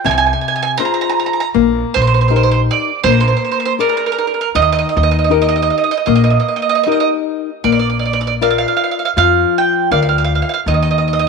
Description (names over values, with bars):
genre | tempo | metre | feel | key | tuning
italian folk, Italian serenade | 80 BPM | 4/4 | swing 55% on 8ths, rubato | Eb major, Bb major from 7.6 s | A4 = 440 Hz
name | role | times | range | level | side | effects
bowl-back mandolin | melody | 0.0-11.3 s | Bb4 to Bb5 | -15 LUFS | right 10 dB | none
nylon-string guitar | accompaniment | 0.0-11.3 s | C3 to D5 | -18 LUFS | left 13 dB | none
upright bass | bass | 0.1-11.3 s | Bb1 to F2 | -16 LUFS | equal | none
room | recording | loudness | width
light reverb, small room reverb | 1960s-style stereo with parts hard left and right | -12 LUFS | side -4 dB against mid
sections
0.0-7.6 A section; 7.6-11.3 B section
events
none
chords
0.0 Fm; 1.6 Eb/Bb; 3.0 Bb7; 4.6 Eb; 7.6 Bb; 10.7 N.C.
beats
0.05 0.80 | 1.55 2.30 3.05 3.80 | 4.55 5.31 6.08 6.87 | 7.64 8.41 9.17 9.92 | 10.67